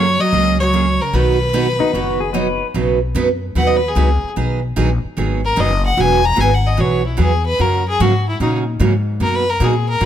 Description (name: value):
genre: country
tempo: 149 BPM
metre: 4/4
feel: swing 67% on 8ths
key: B major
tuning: A4 = 440 Hz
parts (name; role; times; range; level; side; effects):
- clear fiddle; melody; 0.0-10.1 s; D#4 to A#5; -18 LUFS; left 3 dB; none
- archtop guitar, miked and amplified; second line; 0.0-2.4 s; C#3 to F#3; -20 LUFS; right 4 dB; none
- picked steel-string acoustic guitar; accompaniment; 0.0-10.1 s; B2 to B4; -20 LUFS; right 6 dB; none
- upright bass; bass; 0.0-10.1 s; E1 to A#2; -18 LUFS; left 1 dB; none
- pedal steel guitar; second line; 1.8-2.7 s; D#4 to B4; -22 LUFS; left 5 dB; none
- warm upright piano; accompaniment; 1.8-2.6 s; B3 to C#5; -25 LUFS; left 7 dB; none
room: light reverb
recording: none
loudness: -14 LUFS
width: side -10 dB against mid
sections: 0.0-2.8 A section; 2.8-10.1 B section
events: fiddle solo 2.8-10.1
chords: 0.0 F#add9; 1.1 B; 2.8 Badd9; 4.4 G#m7; 6.0 Eadd9; 7.6 F#; 9.2 Bmaj7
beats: 0.33 0.73 | 1.14 1.54 1.94 2.35 | 2.75 3.15 3.56 3.96 | 4.36 4.77 5.17 5.57 | 5.98 6.38 6.78 7.19 | 7.59 7.99 8.40 8.80 | 9.20 9.61 10.01